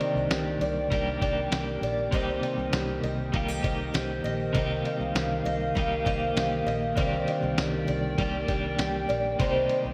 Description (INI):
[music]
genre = dream pop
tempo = 99 BPM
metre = 4/4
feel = straight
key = C minor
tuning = A4 = 437 Hz
[part]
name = clean electric guitar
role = accompaniment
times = 0.0-9.9 s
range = C3 to G4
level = -34 LUFS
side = equal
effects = tremolo, subtle chorus
[part]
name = warbly tape-like pad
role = sustained chords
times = 0.0-9.9 s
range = Eb3 to G5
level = -34 LUFS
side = equal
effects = chorus, built-in reverb
[part]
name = fingerpicked twelve-string acoustic guitar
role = arpeggios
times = 0.0-9.9 s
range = C3 to Eb5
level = -33 LUFS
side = equal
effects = lush chorus, delay
[part]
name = lo-fi sampler-style drum kit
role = drums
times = 0.0-9.8 s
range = kick drum, ride cymbal, snare drum, tambourine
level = -34 LUFS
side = equal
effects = gated reverb
[part]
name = vintage muted fingered electric bass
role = bass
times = 0.2-9.9 s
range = Bb1 to C2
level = -37 LUFS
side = equal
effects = none
[sound]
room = wet lush hall reverb, RT60 2.7 s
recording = bright 1980s-style digital production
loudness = -28 LUFS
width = mono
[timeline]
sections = 0.0-9.9 A section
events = none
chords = 0.0 Ebmaj7; 2.1 Cm7; 7.0 Ebmaj7/C; 9.4 Cm7